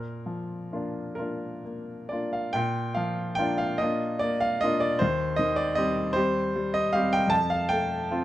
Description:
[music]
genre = classical, romantic nocturne for solo piano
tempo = 43-53 BPM (dotted quarters)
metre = 6/8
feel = rubato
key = Bb major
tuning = A4 = 439 Hz
[part]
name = warm concert grand piano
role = solo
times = 0.0-8.2 s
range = Eb2 to A5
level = -25 LUFS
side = equal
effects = none
[sound]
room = light reverb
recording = none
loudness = -24 LUFS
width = side -14 dB against mid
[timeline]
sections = 0.0-2.5 A section; 2.5-8.2 A section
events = none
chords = 0.0 Bb; 5.0 Cm/Eb; 7.3 F

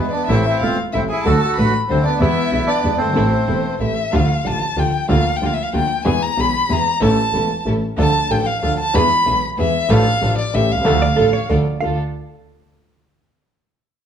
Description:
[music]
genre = tango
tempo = 187 BPM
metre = 3/4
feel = rubato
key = A harmonic minor, D harmonic minor from 4.1 s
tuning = A4 = 441 Hz
[part]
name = bandoneon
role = melody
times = 0.0-3.8 s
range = G#3 to B4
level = -20 LUFS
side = right 1 dB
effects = none
[part]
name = warm violin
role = second line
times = 0.0-11.5 s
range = B4 to B5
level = -20 LUFS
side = left 2 dB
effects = none
[part]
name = dark grand piano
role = accompaniment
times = 0.0-12.0 s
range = E1 to A4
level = -20 LUFS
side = left 1 dB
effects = none
[part]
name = dark symphonic string section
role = stabs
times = 0.0-12.0 s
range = G#3 to A4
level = -27 LUFS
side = right 3 dB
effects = none
[part]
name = dark double bass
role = bass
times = 0.0-12.0 s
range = E1 to E2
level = -21 LUFS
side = right 1 dB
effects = none
[part]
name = hollow-body jazz guitar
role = second line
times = 11.0-12.0 s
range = A4 to F5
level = -20 LUFS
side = right 8 dB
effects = none
[sound]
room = moderate large studio reverb, RT60 1.2 s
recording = none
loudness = -15 LUFS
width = side -8 dB against mid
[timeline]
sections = 0.0-4.1 A section; 4.1-11.8 B section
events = violin solo 4.1-11.8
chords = 0.3 Am; 1.3 D; 2.2 E; 3.2 Am; 4.1 Dm; 5.1 Bb/D; 6.0 E; 7.0 A; 8.0 Dm; 8.9 E; 9.9 Dm/A; 10.5 A7; 10.9 Dm

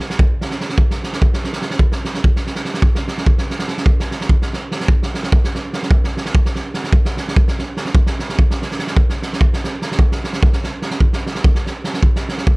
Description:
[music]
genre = balkan folk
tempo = 293 BPM (eighths)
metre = 5/8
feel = straight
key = none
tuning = none
[part]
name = loose indie drum kit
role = percussion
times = 0.0-12.6 s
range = kick drum, snare drum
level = -15 LUFS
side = equal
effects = none
[sound]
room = little or no reverb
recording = close, detailed microphones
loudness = -15 LUFS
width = side -26 dB against mid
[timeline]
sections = 0.0-4.9 A section; 4.9-12.6 B section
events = none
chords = none

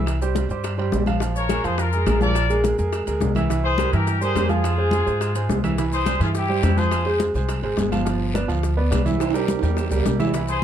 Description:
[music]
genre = latin, salsa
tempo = 210 BPM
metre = 4/4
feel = straight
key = unclear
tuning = A4 = 437 Hz
[part]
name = bright grand piano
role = accompaniment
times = 0.0-10.6 s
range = E3 to F5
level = -24 LUFS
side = right 5 dB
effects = none
[part]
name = upright bass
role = bass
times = 0.0-10.6 s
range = G1 to Ab2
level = -23 LUFS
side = left 1 dB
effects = none
[part]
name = bongos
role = percussion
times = 0.1-10.5 s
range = none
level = -32 LUFS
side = left 8 dB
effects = none
[part]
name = claves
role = percussion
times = 0.1-10.3 s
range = none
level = -41 LUFS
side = right 1 dB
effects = none
[part]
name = congas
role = percussion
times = 0.1-10.6 s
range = none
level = -27 LUFS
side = left 4 dB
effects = none
[part]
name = maracas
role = percussion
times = 0.1-10.6 s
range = none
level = -40 LUFS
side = left 5 dB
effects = none
[part]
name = timbales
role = percussion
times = 0.1-10.5 s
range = none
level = -31 LUFS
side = right 6 dB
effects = none
[part]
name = bright trumpet section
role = melody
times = 1.4-7.2, 10.5-10.6 s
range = E4 to D5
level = -24 LUFS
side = left 3 dB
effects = none
[part]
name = guiro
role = percussion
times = 5.8-10.6 s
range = none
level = -40 LUFS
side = left 6 dB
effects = none
[sound]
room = moderate studio reverb, RT60 0.6 s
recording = dark, warm production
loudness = -19 LUFS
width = side -9 dB against mid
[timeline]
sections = 0.0-10.6 A section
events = drum fill 9.2-10.3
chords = 0.1 C; 1.2 Bbm7; 2.4 Bb7; 3.5 C7; 4.6 Fm; 5.8 C; 6.9 Fm; 8.1 G7; 9.2 C7

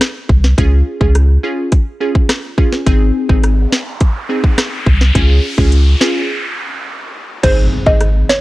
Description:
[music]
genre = dancehall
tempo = 105 BPM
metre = 4/4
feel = straight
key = Ab major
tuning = A4 = 440 Hz
[part]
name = island pop drum kit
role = drums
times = 0.0-8.4 s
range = crash cymbal, hi-hat, kick drum, rim click, snare drum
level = -13 LUFS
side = equal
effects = overdrive
[part]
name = warm sub bass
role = bass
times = 0.3-8.2 s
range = Ab1 to Db2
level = -11 LUFS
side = equal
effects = none
[part]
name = glassy wavetable pluck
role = accompaniment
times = 0.6-8.1 s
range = C4 to Ab4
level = -19 LUFS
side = equal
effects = chorus, sidechain pumping
[part]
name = noise sweep and impact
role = sound effects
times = 3.5-8.4 s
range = none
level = -22 LUFS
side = equal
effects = none
[part]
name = hollow square pluck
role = melody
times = 7.4-8.4 s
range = C5 to Eb5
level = -15 LUFS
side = right 1 dB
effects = chorus
[sound]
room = digital ambience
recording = dry, gritty hardware recording, cassette tape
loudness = -11 LUFS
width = side -18 dB against mid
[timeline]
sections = 0.0-7.4 A section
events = noise sweep 3.5-7.4; break 6.3-7.4; impact 7.4-8.4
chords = 0.0 N.C.; 0.6 Db; 2.9 Ab; 5.2 Db; 7.4 Ab

